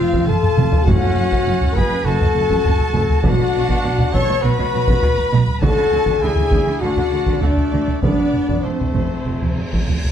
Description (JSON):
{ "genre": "cinematic, epic orchestral film score", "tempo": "101 BPM", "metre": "4/4", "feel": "straight", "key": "unclear", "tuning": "A4 = 435 Hz", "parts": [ { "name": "warm symphonic violin section", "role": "melody", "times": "0.0-9.9 s", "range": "C5 to C#6", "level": "-30 LUFS", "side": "equal", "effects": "none" }, { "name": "rich symphonic violin section", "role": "second line", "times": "0.0-9.9 s", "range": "C5 to C#6", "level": "-29 LUFS", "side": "left 3 dB", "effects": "none" }, { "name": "rich studio viola section", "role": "accompaniment", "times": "0.0-9.9 s", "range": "C4 to C#5", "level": "-29 LUFS", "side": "right 2 dB", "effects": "none" }, { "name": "mellow French horn section", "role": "sustained chords", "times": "0.0-9.9 s", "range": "C4 to C#5", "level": "-20 LUFS", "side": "left 4 dB", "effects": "none" }, { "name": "warm trumpet", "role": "stabs", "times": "0.0-9.9 s", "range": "A3 to A4", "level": "-28 LUFS", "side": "right 2 dB", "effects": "none" }, { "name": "rich symphonic cello section", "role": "bass", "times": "0.0-9.9 s", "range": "F2 to D3", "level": "-24 LUFS", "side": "right 2 dB", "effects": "none" }, { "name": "warm symphonic double bass section", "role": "bass", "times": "0.0-9.9 s", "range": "F1 to D2", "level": "-23 LUFS", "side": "right 3 dB", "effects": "none" }, { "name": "taiko ensemble", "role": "drums", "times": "0.1-10.1 s", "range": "none", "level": "-20 LUFS", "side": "equal", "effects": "none" }, { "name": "timpani", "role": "percussion", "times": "0.9-1.7 s", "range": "F#2", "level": "-25 LUFS", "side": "left 1 dB", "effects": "none" }, { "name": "cymbal swell", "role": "sound effects", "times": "8.9-10.1 s", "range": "none", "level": "-33 LUFS", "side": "right 1 dB", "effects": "none" } ], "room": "moderate recital hall reverb, RT60 1.5 s", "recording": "dark, warm production", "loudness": "-15 LUFS", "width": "side -9 dB against mid", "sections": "0.0-10.1 A section", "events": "drum fill 0.3-0.9; cymbal swell 8.9-10.1", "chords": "0.0 F; 0.9 F#m; 3.2 Bm; 5.6 D; 8.0 F", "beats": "0.28 | 0.87 1.46 2.06 2.65 | 3.24 3.84 4.43 5.03 | 5.62 6.22 6.81 7.42 | 8.03 8.65 9.26 9.88" }